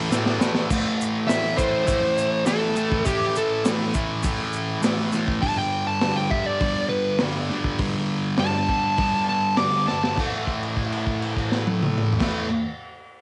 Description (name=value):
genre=garage rock duo or trio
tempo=101 BPM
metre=4/4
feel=straight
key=unclear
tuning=A4 = 440 Hz
part: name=thick fuzz guitar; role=riff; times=0.0-12.5 s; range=G2 to A3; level=-27 LUFS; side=equal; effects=distortion, cassette tape
part: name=crunchy breakbeat drum kit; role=drums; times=0.1-12.3 s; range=crash cymbal, hi-hat, kick drum, snare drum, toms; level=-28 LUFS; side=equal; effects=cassette tape
part: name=egg shaker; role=percussion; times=0.1-5.3 s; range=none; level=-40 LUFS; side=equal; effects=none
part: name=fuzz lead guitar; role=melody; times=1.3-10.2 s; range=G4 to D6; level=-26 LUFS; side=equal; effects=distortion, cassette tape, tape echo
room=moderate booth ambience, RT60 0.2 s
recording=home recording on cassette, nothing above 10.8 kHz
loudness=-23 LUFS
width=mono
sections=0.7-10.2 A section; 10.2-12.6 B section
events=drum fill 0.1-0.7, 9.9; lead electric guitar solo 0.7-10.2; held note 10.2-12.2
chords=0.0 A5; 5.4 G5; 10.2 A5